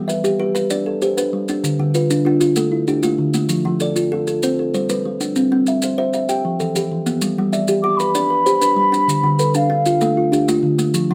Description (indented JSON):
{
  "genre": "southern african traditional, mbira-style interlocking cycle",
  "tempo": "129 BPM (dotted quarters)",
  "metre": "12/8",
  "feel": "straight",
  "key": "G mixolydian",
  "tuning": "A4 = 440 Hz",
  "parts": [
    { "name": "kalimba", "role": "arpeggios", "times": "0.0-11.1 s", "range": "D3 to E5", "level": "-21 LUFS", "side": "equal", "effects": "none" },
    { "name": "kalimba", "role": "arpeggios", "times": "0.0-11.1 s", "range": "D3 to G5", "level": "-23 LUFS", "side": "equal", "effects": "none" },
    { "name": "maracas", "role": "percussion", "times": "0.1-11.1 s", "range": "none", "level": "-31 LUFS", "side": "equal", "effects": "none" },
    { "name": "mellow hollow baroque flute", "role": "melody", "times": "7.8-10.5 s", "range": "F5 to D6", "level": "-19 LUFS", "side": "equal", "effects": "plate reverb" }
  ],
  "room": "moderate studio reverb, RT60 0.6 s",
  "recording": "none",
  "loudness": "-18 LUFS",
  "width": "mono",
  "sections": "0.0-7.2 A section; 7.2-11.1 B section",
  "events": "none",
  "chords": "0.0 G; 1.6 Dm; 3.5 F; 4.4 G; 5.4 C; 6.3 Em; 7.2 G; 9.1 Dm",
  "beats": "0.24 0.70 1.17 | 1.63 2.10 2.57 3.03 | 3.50 3.96 4.43 4.89 | 5.36 5.83 6.29 6.76 | 7.22 7.69 8.15 8.62 | 9.08 9.54 10.01 10.47 | 10.93"
}